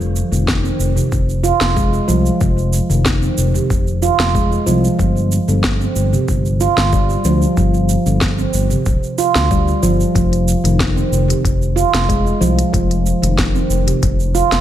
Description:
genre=organic downtempo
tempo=93 BPM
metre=4/4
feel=straight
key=F dorian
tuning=A4 = 438 Hz
part: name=smooth gliding synth bass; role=bass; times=0.0-14.6 s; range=D1 to D2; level=-17 LUFS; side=left 1 dB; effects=sidechain pumping
part: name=afro-pop drum kit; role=drums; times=0.0-14.6 s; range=hi-hat, shaker, snare drum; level=-22 LUFS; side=equal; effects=none
part: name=handpan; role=arpeggios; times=0.3-14.6 s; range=C3 to F4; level=-17 LUFS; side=right 2 dB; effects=low-pass filter, ping-pong delay
part: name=electronic kick drum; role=drums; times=0.5-14.2 s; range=none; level=-18 LUFS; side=left 1 dB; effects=none
room=light reverb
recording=none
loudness=-13 LUFS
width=side -11 dB against mid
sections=0.0-14.6 A section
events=none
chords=0.0 F7(no3); 5.0 G5; 10.2 F7(no3)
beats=0.47 1.12 1.76 | 2.41 3.06 3.70 4.35 | 4.99 5.64 6.28 6.93 | 7.57 8.22 8.86 9.51 | 10.15 10.80 11.44 12.09 | 12.73 13.38 14.02

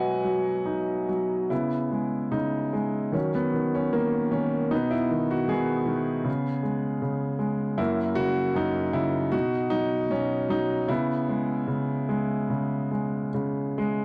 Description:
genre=classical, lyrical solo piano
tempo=77 BPM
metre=4/4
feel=uneven beats, rubato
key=C# dorian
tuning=A4 = 442 Hz
part: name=clear baby grand piano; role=solo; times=0.0-14.0 s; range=F#2 to G#5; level=-27 LUFS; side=equal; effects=none
room=light reverb, small room ambience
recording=dry, gritty hardware recording, transformer saturation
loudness=-27 LUFS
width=mono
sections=0.0-1.5 A section; 1.5-14.0 B section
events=none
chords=0.0 B; 1.5 C#m7; 3.1 D#m; 4.7 G#m; 6.3 C#5; 7.8 F#; 9.3 B; 10.9 C#m7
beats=0.68 | 1.51 2.33 3.15 3.94 | 4.72 5.50 6.28 7.04 | 7.79 8.56 9.33 10.10 | 10.89 11.68 12.49 13.34

